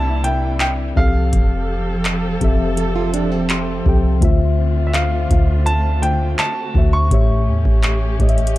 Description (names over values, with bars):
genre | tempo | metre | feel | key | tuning
contemporary R&B | 83 BPM | 4/4 | straight | D minor | A4 = 441 Hz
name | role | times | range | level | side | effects
clear grand piano | melody | 0.0-8.6 s | E5 to C#6 | -24 LUFS | right 1 dB | ping-pong delay
muted felt-like synth keys | accompaniment | 0.0-8.6 s | A2 to C6 | -22 LUFS | left 4 dB | chorus
warm studio string section | sustained chords | 0.0-8.6 s | C3 to A4 | -26 LUFS | right 1 dB | sidechain pumping
soft 808-style bass | bass | 0.0-8.6 s | F1 to E2 | -19 LUFS | equal | none
booming analog drum machine | drums | 0.2-8.6 s | handclaps, hi-hat, kick drum | -17 LUFS | equal | none
nylon-string guitar | arpeggios | 2.8-4.2 s | C4 to A4 | -25 LUFS | right 8 dB | ping-pong delay
room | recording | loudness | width
small room ambience | dark, warm production | -15 LUFS | side -16 dB against mid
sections
0.0-8.6 A section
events
synth keys fill 3.1-4.2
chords
0.0 C7; 1.0 Fmaj7; 4.2 Dm7; 6.4 D7; 7.1 A7